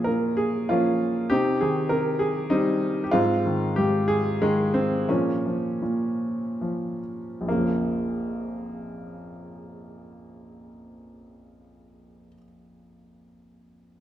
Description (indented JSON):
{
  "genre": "classical, lyrical solo piano",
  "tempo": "67-100 BPM",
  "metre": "3/4",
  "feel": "rubato",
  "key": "Bb dorian",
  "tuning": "A4 = 439 Hz",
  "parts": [
    { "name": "warm grand piano", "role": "solo", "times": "0.0-14.0 s", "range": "Bb1 to Bb4", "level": "-23 LUFS", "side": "equal", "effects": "none" }
  ],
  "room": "wet recital hall reverb, RT60 1.3 s",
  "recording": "recorded in a church or concert hall",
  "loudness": "-22 LUFS",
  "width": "side -11 dB against mid",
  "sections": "0.0-7.5 A section; 7.5-12.6 B section",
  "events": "slowing down 3.1-7.5",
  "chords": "0.0 Bbm; 1.3 Cm; 3.1 Ab; 5.1 Bbm"
}